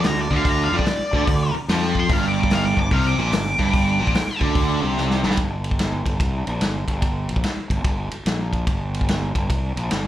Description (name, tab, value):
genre	blues rock power trio and southern rock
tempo	146 BPM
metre	4/4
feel	swing 65% on 8ths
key	unclear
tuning	A4 = 440 Hz
part	octave-fuzz lead guitar	melody	0.0-4.4 s	D5 to D6	-24 LUFS	left 1 dB	wah, distortion
part	biting overdriven guitar	riff	0.0-5.4 s	G2 to F3	-22 LUFS	right 1 dB	slapback echo
part	fuzz fingered electric bass	bass	0.0-10.1 s	G1 to F2	-24 LUFS	equal	overdrive
part	vintage drum kit	drums	0.0-10.0 s	hi-hat, kick drum, ride cymbal, snare drum	-23 LUFS	equal	none
room	light reverb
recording	live gig heard through the venue's PA, club reverb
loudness	-18 LUFS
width	side -13 dB against mid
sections	0.0-5.4 A section; 5.4-10.1 B section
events	lead electric guitar solo 0.0-5.4; drum fill 5.0-5.4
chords	0.0 Dm; 2.1 Gm